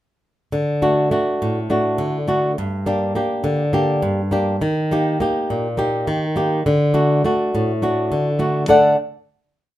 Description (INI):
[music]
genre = greek folk, Greek bouzouki band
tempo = 206 BPM (eighths)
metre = 7/8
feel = straight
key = unclear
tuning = A4 = 440 Hz
[part]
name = flamenco guitar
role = solo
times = 0.5-9.0 s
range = G2 to F#5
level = -16 LUFS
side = equal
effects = none
[sound]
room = moderate studio reverb, RT60 0.6 s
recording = minimal, uncompressed stereo recording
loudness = -17 LUFS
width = side -14 dB against mid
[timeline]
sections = 0.5-8.7 A section; 8.7-9.8 final chord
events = none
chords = 0.5 D; 2.6 Gm; 4.6 Eb; 6.6 D